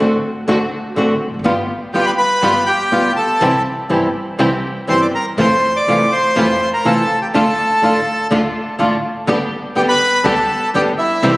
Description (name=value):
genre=tango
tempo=123 BPM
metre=4/4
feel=rubato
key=unclear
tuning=A4 = 440 Hz
part: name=flamenco guitar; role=accompaniment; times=0.0-11.3 s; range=C3 to G4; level=-17 LUFS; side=equal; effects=none
part: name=warm studio string section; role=stabs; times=0.0-11.4 s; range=A3 to G4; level=-24 LUFS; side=equal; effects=none
part: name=upright bass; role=bass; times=0.0-11.4 s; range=E1 to F2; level=-28 LUFS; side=equal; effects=none
part: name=bandoneon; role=melody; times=1.9-11.4 s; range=E4 to D6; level=-16 LUFS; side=equal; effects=analog delay
room=wet scoring stage reverb, RT60 1.9 s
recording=recorded on a phone in the room, club reverb, compression, faint mains hum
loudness=-13 LUFS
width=side -21 dB against mid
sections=0.0-11.4 A section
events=none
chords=0.0 D7; 1.4 G7; 3.4 C; 5.4 Fmaj7; 7.3 Dm; 9.3 G/D